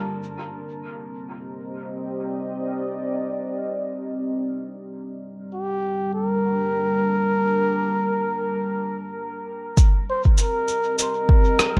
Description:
ambient dub; free time; C dorian; A4 = 439 Hz
deep dark ambient pad; sustained chords; 0.0-11.8 s; G3 to A5; -30 LUFS; equal; chorus, built-in reverb
trumpet with bucket mute; melody; 5.5-11.8 s; G4 to C5; -27 LUFS; equal; dub echo
electronic cabasa, rim click and congas; drums; 9.8-11.8 s; -24 LUFS; equal
electronic kick drum; drums; 9.8-11.8 s; -18 LUFS; equal
moderate spring reverb, RT60 1.3 s, digital ambience; -23 LUFS; mono
0.1-9.8 A section; 9.8-11.8 B section
break 8.6-9.8
0.1 Cm7; 4.9 Gm; 9.8 Cm7

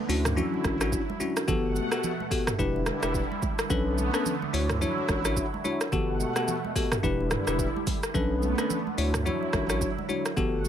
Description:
afrobeats; 108 BPM; 4/4; swing 58% on 16ths; A4 = 440 Hz
lush unison pad; sustained chords; 0.0-10.7 s; B2 to F#5; -33 LUFS; right 3 dB; chorus, phaser
bell-like tine electric piano; accompaniment; 0.1-10.7 s; B3 to C#5; -29 LUFS; left 4 dB
saturated sub bass; bass; 0.1-10.7 s; E1 to D2; -30 LUFS; right 1 dB
deep house drum kit; drums; 0.1-10.7 s; hi-hat, kick drum, rim click, shaker, toms; -30 LUFS; right 1 dB; overdrive
congas; percussion; 0.4-10.7 s; -38 LUFS; right 4 dB
little or no reverb; -25 LUFS; side -9 dB against mid
0.0-10.7 A section
0.1 Dmaj9; 1.5 Gmaj9; 2.6 Em7; 3.7 Bm9; 4.5 Dmaj9; 5.9 Gmaj9; 7.0 Em7; 8.1 Bm9; 9.0 Dmaj9

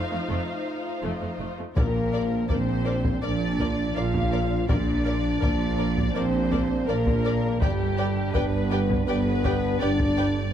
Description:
cinematic, epic orchestral film score; 82 BPM; 4/4; straight; Bb major; A4 = 437 Hz
warm symphonic violin section; melody; 0.0-10.5 s; G4 to F5; -34 LUFS; left 2 dB
dark symphonic violin section; second line; 0.0-10.3 s; F4 to G5; -36 LUFS; left 2 dB
warm symphonic viola section; accompaniment; 0.0-10.3 s; A3 to B4; -36 LUFS; equal
mellow French horn section; sustained chords; 0.0-10.4 s; G3 to F4; -28 LUFS; left 3 dB
rich symphonic cello section; bass; 0.1-10.5 s; F2 to Bb2; -31 LUFS; right 2 dB
rich symphonic double bass section; bass; 0.3-10.5 s; F1 to Bb1; -30 LUFS; right 2 dB
warm trombone section; sustained chords; 1.8-10.4 s; F3 to D4; -34 LUFS; right 7 dB
mellow tuba; bass; 1.8-10.5 s; G1 to Bb1; -32 LUFS; right 5 dB
taiko ensemble; drums; 1.8-10.5 s; -28 LUFS; equal
timpani; percussion; 1.8-2.8 s; Bb2; -33 LUFS; left 1 dB
light reverb; close, detailed microphones; -22 LUFS; side -9 dB against mid
0.0-1.8 A section; 1.8-10.5 B section
0.0 F7; 1.8 Bb; 7.6 G

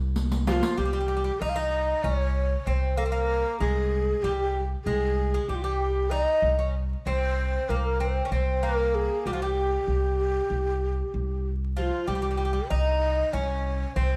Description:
Turkish makam ensemble; 191 BPM (eighths); 9/8; straight; C makam kurdi; A4 = 440 Hz
upright bass; bass; 0.0-14.2 s; C2; -30 LUFS; equal
riq; percussion; 0.2-0.8 s; -32 LUFS; equal
breathy mellow ney; melody; 0.5-14.2 s; F4 to F5; -30 LUFS; equal
Greek bouzouki; second line; 0.5-14.2 s; F3 to Eb4; -34 LUFS; equal
light reverb; vinyl crackle; -26 LUFS; mono
0.8-14.2 A section
drum fill 0.2-0.8

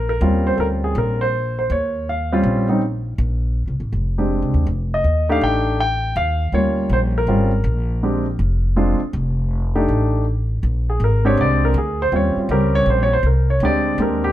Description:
jazz piano trio; 161 BPM; 4/4; swing 65% on 8ths; Bb mixolydian; A4 = 440 Hz
warm grand piano; melody; 0.0-14.3 s; G3 to G5; -19 LUFS; equal; plate reverb
upright bass; bass; 0.0-14.3 s; F1 to Eb2; -19 LUFS; equal
light reverb; -16 LUFS; side -13 dB against mid
0.0-10.6 A section; 10.6-14.3 B section
grand piano solo 10.6-14.3
0.0 Eb13; 3.2 Bb13; 4.7 F13; 6.2 Eb9; 7.7 Bb9; 9.1 F13; 10.6 Bb13; 12.1 Eb13; 13.6 Bb13

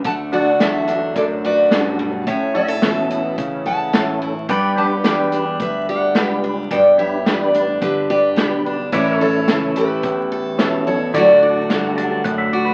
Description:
honky-tonk and classic country; 108 BPM; 4/4; straight; D major; A4 = 440 Hz
picked steel-string acoustic guitar; accompaniment; 0.0-12.7 s; G2 to A4; -25 LUFS; equal
fat analog bass; bass; 0.0-12.7 s; G1 to C#3; -31 LUFS; equal
natural country drum kit; drums; 0.0-12.4 s; hi-hat, kick drum, snare drum; -23 LUFS; equal
picked steel-string acoustic guitar; melody; 0.1-12.7 s; G4 to B5; -20 LUFS; equal
percussive tonewheel organ; accompaniment; 0.3-12.1 s; C#4 to B4; -26 LUFS; equal; chorus vibrato, fast rotary speaker
pedal steel guitar; sustained chords; 4.5-12.7 s; E4 to D5; -27 LUFS; equal
pedal steel guitar; second line; 12.0-12.7 s; B4 to A5; -25 LUFS; equal
moderate studio reverb, RT60 0.8 s; very old 78 rpm record, vinyl crackle, faint mains hum; -17 LUFS; mono
0.0-12.7 A section
0.1 D; 2.3 A; 4.5 G; 8.9 A; 11.1 D

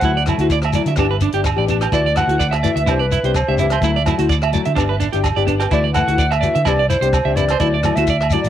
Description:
highlife guitar band; 127 BPM; 4/4; swing 53% on 16ths; D mixolydian; A4 = 441 Hz
mellow clarinet; melody; 0.0-8.5 s; B4 to F#5; -20 LUFS; equal; cassette tape
nylon-string guitar; accompaniment; 0.0-8.5 s; E3 to G4; -22 LUFS; left 8 dB
clean electric guitar; arpeggios; 0.0-8.4 s; D4 to E5; -22 LUFS; right 10 dB; wide subtle chorus, analog delay
fingered electric bass; bass; 0.0-8.5 s; G1 to D3; -20 LUFS; equal
compact cocktail drum kit; drums; 0.0-8.5 s; hi-hat, kick drum, rim click; -24 LUFS; equal; cassette tape
shekere; percussion; 0.0-8.5 s; -25 LUFS; left 3 dB
agogo bells; percussion; 0.3-8.3 s; -26 LUFS; right 10 dB
small room ambience; home recording on cassette; -14 LUFS; side -10 dB against mid
0.0-8.5 A section
0.0 Dadd9; 1.0 G; 1.9 Dadd9; 2.9 Cadd9; 3.8 Dadd9; 4.8 G; 5.7 Dadd9; 6.7 Cadd9; 7.6 Dadd9

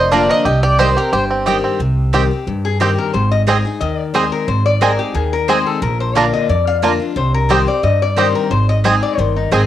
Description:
bluegrass; 179 BPM; 4/4; straight; C minor; A4 = 439 Hz
bluegrass banjo; melody; 0.0-9.6 s; C4 to C5; -18 LUFS; right 3 dB; cassette tape
mandolin; melody; 0.0-1.2 s; Bb4 to Eb5; -16 LUFS; equal; cassette tape, plate reverb
picked steel-string acoustic guitar; accompaniment; 0.0-9.7 s; F2 to Ab4; -21 LUFS; left 5 dB; cassette tape
upright bass; bass; 0.0-9.7 s; F1 to G2; -18 LUFS; right 1 dB
mandolin; stabs; 0.1-9.6 s; Bb3 to Bb5; -20 LUFS; right 7 dB; cassette tape, plate reverb
lap resonator guitar; second line; 2.6-9.7 s; Eb4 to F5; -19 LUFS; left 6 dB; cassette tape, plate reverb
moderate studio reverb, RT60 0.6 s; home recording on cassette; -13 LUFS; side -12 dB against mid
0.0-1.8 A section; 1.8-9.7 B section
resonator guitar played with a steel bar solo 1.8-9.7
0.5 Cm; 3.1 Ab; 5.8 Bb; 7.2 Cm; 8.5 Ab

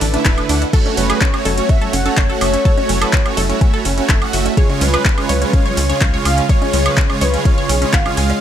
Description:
progressive house; 125 BPM; 4/4; straight; A4 = 439 Hz
lush unison pad; sustained chords; 0.0-8.4 s; C#3 to B4; -26 LUFS; equal; chorus, sidechain pumping
wide unison pluck; arpeggios; 0.0-8.4 s; C#4 to G#5; -24 LUFS; equal; cassette tape, sidechain pumping, ping-pong delay
tight sequencer bass; bass; 0.0-8.3 s; D1 to D2; -19 LUFS; left 1 dB; sidechain pumping
deep house drum kit; drums; 0.0-8.4 s; crash cymbal, handclaps, hi-hat, ride cymbal, woodblock; -21 LUFS; equal; sidechain pumping on hats, studio reverb, sidechain pumping on cymbals, sidechain pumping on perc
soft supersaw; stabs; 0.1-8.4 s; C#3 to F#5; -20 LUFS; right 4 dB; sidechain pumping
congas and bongos; percussion; 0.1-8.4 s; -28 LUFS; equal; sidechain pumping on perc, studio reverb
electronic kick drum; drums; 0.3-8.0 s; -14 LUFS; equal; studio reverb
warm velvety synth lead; melody; 0.7-8.4 s; G#4 to F#5; -22 LUFS; left 2 dB; chorus, cassette tape, ping-pong delay
digital ambience; -13 LUFS; side -10 dB against mid
0.0-8.4 A section
0.0 Dsus2; 0.7 F#m; 4.6 C#

